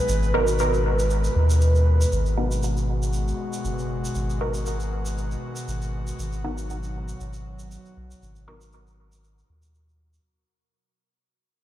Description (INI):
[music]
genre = dub techno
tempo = 118 BPM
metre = 4/4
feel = swing 54% on 16ths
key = G# minor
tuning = A4 = 441 Hz
[part]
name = airy breathy pad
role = sustained chords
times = 0.0-10.2 s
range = B2 to B4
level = -29 LUFS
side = left 1 dB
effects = chorus
[part]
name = soft dub sub bass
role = bass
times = 0.1-10.2 s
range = F#1 to D#2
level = -24 LUFS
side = equal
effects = none
[part]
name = tube shaker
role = percussion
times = 0.1-10.2 s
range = none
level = -38 LUFS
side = right 2 dB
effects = none
[part]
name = filtered dub chord stab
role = stabs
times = 0.3-8.6 s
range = B3 to A#4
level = -30 LUFS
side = right 2 dB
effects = phaser, dub echo
[sound]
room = light reverb, digital ambience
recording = played on a big sound system in a bare room, large studio reverb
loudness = -22 LUFS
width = side -13 dB against mid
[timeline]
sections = 0.0-2.1 A section; 2.1-10.3 B section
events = fade-out 2.1-10.3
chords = 0.0 G#m7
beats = | 0.09 0.59 1.10 1.61 | 2.12 2.63 3.14 3.65 | 4.15 4.66 5.17 5.68 | 6.19 6.70 7.21 7.71 | 8.22 8.73 9.24 9.75